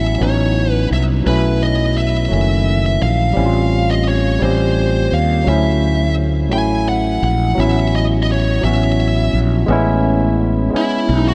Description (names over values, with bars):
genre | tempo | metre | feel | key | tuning
slow six-eight R&B | 57 BPM (dotted quarters) | 6/8 | straight | unclear | A4 = 439 Hz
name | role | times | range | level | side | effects
high-gain lead guitar | melody | 0.0-11.3 s | E4 to G#5 | -24 LUFS | equal | distortion
barky tine electric piano | accompaniment | 0.0-11.3 s | D#3 to G4 | -20 LUFS | equal | overdrive
mellow fretless electric bass | bass | 0.0-11.3 s | F#1 to D#2 | -18 LUFS | equal | analog chorus
room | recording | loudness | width
light reverb | none | -16 LUFS | mono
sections
0.0-9.7 A section; 9.7-11.3 B section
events
none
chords
0.0 A69; 1.2 B7sus4; 3.4 A7alt; 5.5 Dmaj9; 7.6 A69; 9.7 Amaj9